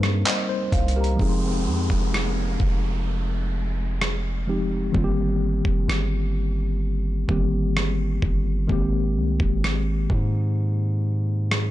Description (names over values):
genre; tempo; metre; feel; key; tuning
contemporary R&B; 64 BPM; 4/4; straight; F minor; A4 = 440 Hz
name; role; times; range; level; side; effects
tine electric piano; accompaniment; 0.0-11.7 s; Eb3 to Eb5; -26 LUFS; left 2 dB; medium stereo tremolo
long sustained 808-style bass; bass; 0.0-11.7 s; F1 to Ab2; -24 LUFS; equal; none
dusty soul sampler-style drum kit; drums; 0.0-11.7 s; handclaps, hi-hat, kick drum, rim click; -25 LUFS; equal; overdrive
celesta; texture; 0.0-2.1 s; C5 to C6; -37 LUFS; right 5 dB; stereo widening, ping-pong delay
downlifter; sound effects; 1.2-8.7 s; none; -35 LUFS; right 2 dB; none
room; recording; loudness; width
little or no reverb; nothing above 10.3 kHz; -21 LUFS; side -15 dB against mid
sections
0.0-1.2 A section; 1.2-11.7 B section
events
hi-hats muted 1.2-11.7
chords
0.0 Cm7; 1.2 Fm7; 4.9 Cm7; 8.7 Abmaj9